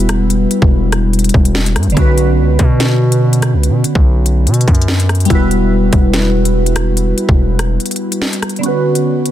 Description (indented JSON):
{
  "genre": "hip hop, drill",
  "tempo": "144 BPM",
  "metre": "4/4",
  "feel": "half-time",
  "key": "B minor",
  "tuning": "A4 = 441 Hz",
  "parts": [
    { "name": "glassy digital keys", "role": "accompaniment", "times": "0.0-9.3 s", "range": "D3 to B4", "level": "-15 LUFS", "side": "equal", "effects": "chorus, low-pass filter" },
    { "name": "distorted 808-style bass", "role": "bass", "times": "0.0-7.8 s", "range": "E1 to B2", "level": "-13 LUFS", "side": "equal", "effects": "distortion" },
    { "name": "drill drum kit", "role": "drums", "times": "0.0-9.3 s", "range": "hi-hat, kick drum, rim click, snare drum", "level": "-14 LUFS", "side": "equal", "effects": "none" }
  ],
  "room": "digital ambience",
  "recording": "dense, heavily limited modern master",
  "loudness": "-10 LUFS",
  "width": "side -12 dB against mid",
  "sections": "0.0-8.6 A section",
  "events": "break 7.8-8.6; kick muted 8.6-9.3",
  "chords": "0.0 Emadd9; 2.0 Bmadd9; 5.3 Emadd9; 8.6 Bmadd9"
}